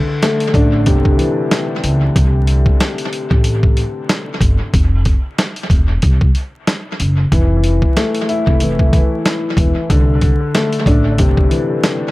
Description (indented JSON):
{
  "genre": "hip hop, boom-bap hip-hop",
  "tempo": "93 BPM",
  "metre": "4/4",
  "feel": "swing 57% on 16ths",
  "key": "C major",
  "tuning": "A4 = 440 Hz",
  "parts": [
    { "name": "dark upright piano", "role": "accompaniment", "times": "0.0-12.1 s", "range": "C3 to E4", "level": "-17 LUFS", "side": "left 2 dB", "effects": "cassette tape, high-pass filter, low-pass filter, dub echo" },
    { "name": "boom bap sampler-style drum kit", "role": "drums", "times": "0.2-12.0 s", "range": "hi-hat, kick drum, snare drum", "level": "-15 LUFS", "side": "equal", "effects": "dub echo" },
    { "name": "upright bass", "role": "bass", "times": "0.5-11.4 s", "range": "E1 to Db2", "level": "-16 LUFS", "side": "equal", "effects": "none" }
  ],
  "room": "small room ambience",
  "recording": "echo-heavy mix, vinyl crackle",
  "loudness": "-12 LUFS",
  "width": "side -19 dB against mid",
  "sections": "0.0-12.1 A section",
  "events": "none",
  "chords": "0.0 C69; 4.7 Fmaj7; 9.9 C69"
}